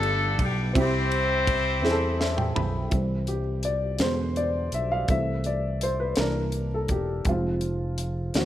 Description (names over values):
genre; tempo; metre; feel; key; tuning
slow gospel; 55 BPM (dotted quarters); 6/8; straight; C major; A4 = 440 Hz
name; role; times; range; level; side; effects
clear horn section; melody; 0.0-2.6 s; G3 to C5; -26 LUFS; left 2 dB; none
dark upright piano; accompaniment; 0.0-8.4 s; G2 to B5; -27 LUFS; equal; none
fingered electric bass; bass; 0.0-8.4 s; E1 to E2; -29 LUFS; equal; none
tight funk drum kit; drums; 0.0-8.4 s; hi-hat, kick drum, ride cymbal, snare drum, toms; -29 LUFS; right 1 dB; none
room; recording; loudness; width
light reverb; none; -23 LUFS; side -12 dB against mid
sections
0.0-2.9 A section; 2.9-8.4 B section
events
drum fill 1.8-2.9; upright piano fill 1.8-2.9; upright piano solo 2.9-8.4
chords
0.0 G; 0.7 C; 4.0 E7; 5.1 Am/C; 6.2 C7; 7.3 Fm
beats
| 0.75 1.83 | 2.92 4.00 | 5.09 6.17 | 7.26 8.34